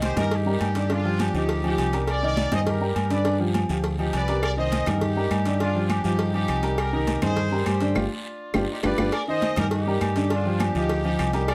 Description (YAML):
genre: latin, salsa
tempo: 204 BPM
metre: 4/4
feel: straight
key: C minor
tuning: A4 = 440 Hz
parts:
  - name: warm horn section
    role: melody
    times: 0.0-11.5 s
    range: D4 to Eb5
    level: -32 LUFS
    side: equal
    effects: none
  - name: warm upright piano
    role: accompaniment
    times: 0.0-11.5 s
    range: D3 to Eb5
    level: -29 LUFS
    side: equal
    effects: none
  - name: fingered electric bass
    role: bass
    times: 0.0-11.5 s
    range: G1 to G2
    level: -28 LUFS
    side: equal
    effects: none
  - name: agogo bells and timbales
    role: percussion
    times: 0.0-11.5 s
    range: none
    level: -35 LUFS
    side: equal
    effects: none
  - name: congas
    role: percussion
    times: 0.0-11.5 s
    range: none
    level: -34 LUFS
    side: equal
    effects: none
  - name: cowbell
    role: percussion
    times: 0.0-11.5 s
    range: none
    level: -36 LUFS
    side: equal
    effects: none
  - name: guiro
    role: percussion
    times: 0.0-11.5 s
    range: none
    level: -44 LUFS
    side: equal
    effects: none
  - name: claves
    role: percussion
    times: 4.4-11.5 s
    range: none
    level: -40 LUFS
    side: equal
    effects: none
room: moderate studio reverb, RT60 0.6 s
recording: none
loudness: -24 LUFS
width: mono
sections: 0.0-9.1 A section; 9.1-11.5 A section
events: band accent 8.0-9.1; drum fill 8.5-9.1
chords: 0.0 Cm7; 0.9 G5; 2.1 Cm7; 3.3 G7; 4.4 Cm7; 5.6 G5; 6.8 Cm7; 8.0 G7; 9.1 Cm7; 10.3 G5